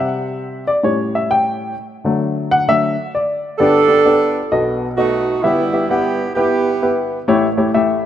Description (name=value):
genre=uptempo gospel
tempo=130 BPM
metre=4/4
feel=swing 63% on 8ths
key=G major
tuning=A4 = 440 Hz
part: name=warm baby grand piano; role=accompaniment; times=0.0-8.1 s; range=G1 to G5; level=-16 LUFS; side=left 2 dB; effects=none
part: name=mellow saxophone section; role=melody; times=3.6-7.2 s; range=G3 to A4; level=-16 LUFS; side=right 3 dB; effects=none
room=moderate lush hall reverb, RT60 2.3 s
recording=rough home demo mix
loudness=-14 LUFS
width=side -10 dB against mid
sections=0.0-3.6 A section; 3.6-8.1 B section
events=grand piano solo 0.0-3.6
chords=0.0 Cadd9; 0.8 A7; 1.8 D; 3.6 G; 4.5 B7; 5.4 Em/G; 7.3 A7